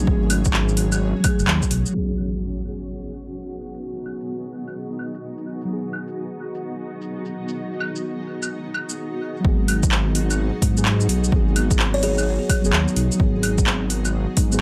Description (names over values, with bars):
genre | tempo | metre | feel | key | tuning
future garage | 128 BPM | 4/4 | swing 64% on 16ths | G# phrygian | A4 = 440 Hz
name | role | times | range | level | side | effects
muted felt-like synth keys | accompaniment | 0.0-14.6 s | F#3 to G#4 | -30 LUFS | equal | chorus, vintage 12-bit sampler grit, sidechain pumping, low-pass filter, analog delay
granular cloud pad | sustained chords | 0.0-14.6 s | F#3 to D#5 | -33 LUFS | equal | built-in reverb, sidechain pumping
swelling detuned saw bass | bass | 0.0-1.8, 9.4-14.6 s | F#1 to G#2 | -24 LUFS | equal | sidechain pumping
electronic kick drum | drums | 0.1-1.7, 9.4-14.5 s | none | -24 LUFS | equal | overdrive, studio reverb
deep house drum kit | drums | 0.3-14.6 s | claves, handclaps, hi-hat, shaker | -27 LUFS | equal | overdrive, studio reverb
impact | sound effects | 1.9-3.8 s | none | -33 LUFS | equal | none
buzzing kalimba | melody | 11.9-12.5 s | G#4 to C#5 | -29 LUFS | equal | tape echo
room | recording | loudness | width
light reverb, digital ambience | echo-heavy mix, low-pass filter | -22 LUFS | mono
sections
0.0-1.9 A section; 1.9-9.4 B section; 9.4-14.6 A section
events
impact 1.9-3.8; filter sweep on synth keys 1.9-9.4; filter sweep 1.9-9.4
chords
0.0 F#madd9; 1.9 G#m7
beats
| 0.07 0.54 1.01 1.48 | 1.95 2.42 2.88 3.35 | 3.82 4.29 4.76 5.23 | 5.70 6.17 6.63 7.10 | 7.57 8.04 8.51 8.98 | 9.45 9.91 10.38 10.85 | 11.32 11.79 12.26 12.73 | 13.20 13.66 14.13 14.60